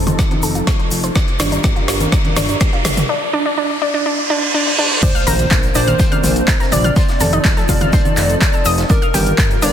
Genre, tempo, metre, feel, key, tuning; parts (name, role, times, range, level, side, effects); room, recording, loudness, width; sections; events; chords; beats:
progressive house; 124 BPM; 4/4; straight; A4 = 440 Hz
lush unison pad; sustained chords; 0.0-9.7 s; D3 to Bb4; -24 LUFS; left 1 dB; chorus, phaser, sidechain pumping
fat analog bass; bass; 0.0-9.7 s; F1 to Bb1; -20 LUFS; equal; sidechain pumping
riser, reverse cymbal and impact; sound effects; 1.0-7.0 s; -23 LUFS; right 2 dB
analog pluck; arpeggios; 0.1-9.7 s; D4 to Bb6; -20 LUFS; equal; chorus, sidechain pumping, ping-pong delay
deep house drum kit; drums; 0.1-9.7 s; crash cymbal, handclaps, hi-hat, snare drum, toms; -22 LUFS; equal; high-pass filter on snare, studio ambience, high-pass filter on hats, high-pass filter on toms, high-pass filter on cymbals
egg shaker; percussion; 0.1-9.7 s; -28 LUFS; left 6 dB
electronic toms and congas; percussion; 0.1-9.2 s; -21 LUFS; right 2 dB; sidechain pumping on toms, studio ambience, sidechain pumping on perc
electronic kick drum; drums; 0.2-9.5 s; -16 LUFS; equal; overdrive, studio ambience
plucky unison lead; melody; 5.0-9.7 s; Bb4 to D5; -21 LUFS; equal; sidechain pumping, dub echo
raw garage drum kit; drums; 5.0-9.7 s; hi-hat, snare drum; -30 LUFS; right 2 dB
moderate lush hall reverb, RT60 1.6 s; dense, heavily limited modern master; -13 LUFS; side -9 dB against mid
0.0-5.0 A section; 5.0-9.7 B section
build-up 0.0-5.0; drum fill 0.0-3.1, 4.7-5.0; filter sweep on synth arpeggio sound 0.0-5.0; riser 1.0-5.0; reverse cymbal 4.1-5.0; drop 5.0-9.7; impact 5.0-7.0
0.0 F7; 1.2 Gm7; 3.1 N.C.; 5.0 Bbadd9; 7.0 F7; 8.9 Gm7
0.19 0.67 | 1.16 1.64 2.12 2.61 | 3.09 3.58 4.06 4.54 | 5.03 5.51 6.00 6.48 | 6.96 7.45 7.93 8.41 | 8.90 9.38